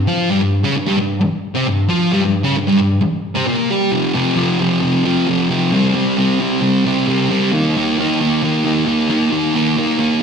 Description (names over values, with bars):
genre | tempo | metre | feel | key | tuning
rock | 133 BPM | 4/4 | straight | unclear | A4 = 440 Hz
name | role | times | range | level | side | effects
thick fuzz guitar | solo | 0.0-10.2 s | F2 to G4 | -14 LUFS | equal | distortion
room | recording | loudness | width
moderate club reverb, RT60 0.7 s | live gig heard through the venue's PA, recital hall reverb | -14 LUFS | side -6 dB against mid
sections
0.0-3.9 A section; 3.9-10.2 B section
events
none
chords
0.0 N.C.; 3.9 F5; 5.7 C5; 7.5 Eb5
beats
| 0.30 0.75 1.21 1.66 | 2.12 2.57 3.02 3.47 | 3.92 4.38 4.83 5.28 | 5.73 6.17 6.62 7.07 | 7.52 7.97 8.41 8.86 | 9.31 9.76 10.20